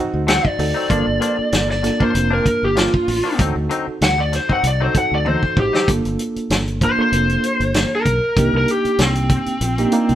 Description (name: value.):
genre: straight-eighth soul blues.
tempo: 96 BPM.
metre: 4/4.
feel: swing 55% on 16ths.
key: G minor.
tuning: A4 = 440 Hz.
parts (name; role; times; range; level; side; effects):
bright reed electric piano; accompaniment; 0.0-10.2 s; Bb3 to C5; -22 LUFS; right 3 dB; medium tremolo.
fingered electric bass; bass; 0.1-10.2 s; F1 to D2; -22 LUFS; equal; none.
lead guitar through a small cranked amp; melody; 0.3-10.2 s; C4 to F#5; -19 LUFS; left 1 dB; overdrive.
direct-recorded clean electric guitar; stabs; 0.3-5.9 s; G2 to Eb4; -26 LUFS; left 6 dB; none.
warm soul drum kit; drums; 0.3-10.2 s; hi-hat, kick drum, snare drum, toms; -20 LUFS; equal; none.
room: light reverb.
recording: band playing live in one room.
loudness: -15 LUFS.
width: side -12 dB against mid.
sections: 0.0-5.9 A section; 5.9-10.2 B section.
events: drum fill 5.3-5.9; lead electric guitar solo 5.9-10.2.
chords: 0.0 D7b9; 0.9 Gm7; 3.4 D7b9; 5.9 Gm7; 8.4 Cm7.